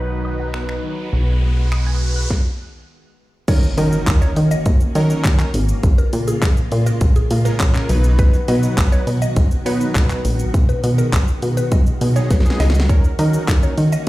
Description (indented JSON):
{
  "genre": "dance-pop",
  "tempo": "102 BPM",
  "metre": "4/4",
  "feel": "straight",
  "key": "Eb minor",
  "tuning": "A4 = 440 Hz",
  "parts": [
    { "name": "big bright polysynth", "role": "accompaniment", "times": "0.0-13.7 s", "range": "F#3 to B4", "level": "-26 LUFS", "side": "right 1 dB", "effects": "sidechain pumping, low-pass filter" },
    { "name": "soft string machine", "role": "sustained chords", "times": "0.0-14.1 s", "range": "Db3 to F#4", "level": "-28 LUFS", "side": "left 1 dB", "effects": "ensemble chorus, sidechain pumping, low-pass filter" },
    { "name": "tight sequenced synth", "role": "arpeggios", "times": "0.0-2.3 s", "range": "D#3 to Gb6", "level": "-36 LUFS", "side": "left 1 dB", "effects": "chorus, phaser, sidechain pumping, low-pass filter, ping-pong delay" },
    { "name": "plucky analog bass", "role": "bass", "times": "0.0-14.0 s", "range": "Ab1 to Eb3", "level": "-17 LUFS", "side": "equal", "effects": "sidechain pumping" },
    { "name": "riser and impact", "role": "sound effects", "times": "0.7-5.8 s", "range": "none", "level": "-29 LUFS", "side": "equal", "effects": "none" },
    { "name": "pop drum kit", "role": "drums", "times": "0.5-14.1 s", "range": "crash cymbal, finger snaps, handclaps, hi-hat, kick drum, shaker, snare drum", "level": "-17 LUFS", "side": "equal", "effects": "none" },
    { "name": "mallet-like synth pluck", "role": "melody", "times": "3.5-14.1 s", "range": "Ab4 to Eb5", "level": "-28 LUFS", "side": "equal", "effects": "chorus, phaser, ping-pong delay" },
    { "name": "group handclap", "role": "percussion", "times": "13.5-13.6 s", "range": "none", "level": "-32 LUFS", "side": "left 4 dB", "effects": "none" }
  ],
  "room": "little or no reverb",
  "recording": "played on a big sound system in a bare room, stone room reverb",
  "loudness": "-14 LUFS",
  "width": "side -17 dB against mid",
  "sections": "0.0-3.5 A section; 3.5-14.1 B section",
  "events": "riser 0.7-3.5; stop 2.3-3.5; drop 3.5-14.1; impact 3.5-5.8; drum fill 12.3-12.9",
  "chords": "0.0 B; 1.1 Abm7/Cb; 3.5 Ebm7; 5.8 Bbm7; 7.9 B; 10.5 Abm7/Cb; 12.9 Ebm7"
}